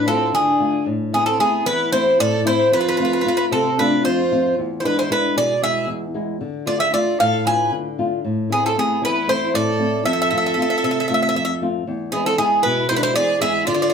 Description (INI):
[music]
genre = greek folk, Greek bouzouki band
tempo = 229 BPM (eighths)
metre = 7/8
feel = straight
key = E phrygian dominant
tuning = A4 = 439 Hz
[part]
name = Greek bouzouki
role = melody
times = 0.0-13.9 s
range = G#4 to G#5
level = -18 LUFS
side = right 1 dB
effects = none
[part]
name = clear violin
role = second line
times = 0.0-13.9 s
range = B3 to B4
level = -24 LUFS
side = right 1 dB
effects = none
[part]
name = flamenco guitar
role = accompaniment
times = 0.0-13.9 s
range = E2 to F4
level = -23 LUFS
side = left 2 dB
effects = none
[sound]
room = wet small room reverb, RT60 0.5 s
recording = heard from further back in the room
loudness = -17 LUFS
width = side -6 dB against mid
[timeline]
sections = 0.0-11.9 A section; 11.9-13.9 A section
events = speeding up 0.0-13.9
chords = 0.0 Dm; 0.9 Am; 2.7 F; 4.6 E; 6.4 Dm; 8.2 Am; 10.1 F; 11.9 E